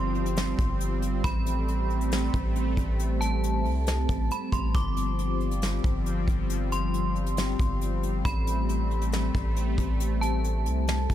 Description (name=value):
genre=hip hop, atmospheric cloud-rap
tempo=137 BPM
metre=4/4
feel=half-time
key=A minor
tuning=A4 = 438 Hz
part: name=metallic FM bell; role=melody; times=0.0-11.1 s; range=A5 to D6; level=-35 LUFS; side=right 2 dB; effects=chorus, low-pass filter, digital delay
part: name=sweeping resonant pad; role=sustained chords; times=0.0-11.1 s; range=F3 to C4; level=-31 LUFS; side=left 1 dB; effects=chorus, sidechain pumping
part: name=long sustained 808-style bass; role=bass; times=0.0-11.1 s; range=G1 to C2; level=-28 LUFS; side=equal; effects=none
part: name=downlifter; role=sound effects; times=0.0-1.2 s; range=none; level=barely audible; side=none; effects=none
part: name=soft brush drum kit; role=drums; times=0.1-11.1 s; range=hi-hat, kick drum, snare drum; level=-30 LUFS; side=equal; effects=none
room=small room reverb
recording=none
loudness=-24 LUFS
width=side -12 dB against mid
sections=0.0-11.1 A section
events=none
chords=0.0 G7sus4; 1.2 Am7; 4.7 G7sus4; 8.2 Am7